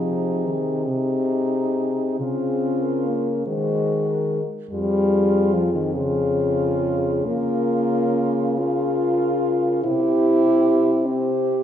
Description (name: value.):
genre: classical, lyrical piece for horn quartet.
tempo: 47 BPM (dotted quarters).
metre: 6/8.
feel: uneven beats, rubato.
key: unclear.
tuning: A4 = 440 Hz.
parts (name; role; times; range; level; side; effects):
warm French horn; melody; 0.0-11.6 s; Ab4 to C5; -28 LUFS; left 6 dB; none.
clear French horn; second line; 0.0-11.6 s; Eb4 to G4; -27 LUFS; right 8 dB; none.
dark French horn; accompaniment; 0.0-11.6 s; C3 to F4; -22 LUFS; left 2 dB; none.
mellow French horn; bass; 0.0-11.6 s; F2 to Eb3; -26 LUFS; right 2 dB; none.
room: wet recital hall reverb, RT60 1.3 s.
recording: recorded in a church or concert hall, nothing above 10.7 kHz.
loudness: -19 LUFS.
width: side -9 dB against mid.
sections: 0.0-11.6 A section.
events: none.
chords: 0.0 Ab/C; 2.2 Db; 3.5 Cdim/Eb; 4.7 Db/F; 7.3 Bbm/Db; 9.8 C.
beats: 0.89 | 2.20 3.47 | 4.70 5.94 | 7.25 8.59 | 9.84 11.08.